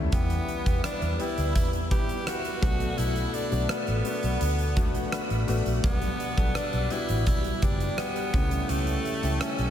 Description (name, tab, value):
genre	1980s-style pop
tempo	84 BPM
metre	4/4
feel	straight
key	E dorian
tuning	A4 = 440 Hz
part	clear concert grand piano	accompaniment	0.0-9.7 s	B2 to B5	-32 LUFS	left 3 dB	none
part	phased analog pad	sustained chords	0.0-9.7 s	G3 to B5	-37 LUFS	right 1 dB	phaser, chorus
part	vintage muted fingered electric bass	bass	0.0-9.7 s	F#1 to E2	-28 LUFS	equal	none
part	raspy tenor saxophone	melody	0.1-9.7 s	A3 to G4	-33 LUFS	equal	ping-pong delay
part	huge arena drum kit	drums	0.1-9.7 s	hi-hat, kick drum, rim click	-29 LUFS	equal	none
room	moderate lush hall reverb, RT60 2.5 s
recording	dreamy mix soaked in reverb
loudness	-24 LUFS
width	side -10 dB against mid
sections	0.0-9.7 A section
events	grand piano fill 4.4-5.8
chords	0.1 Em; 2.6 Bm7; 5.8 Gmaj7/B; 8.3 A7/C#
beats	| 0.12 0.84 1.55 2.27 | 2.98 3.69 4.41 5.12 | 5.84 6.55 7.27 7.98 | 8.70 9.41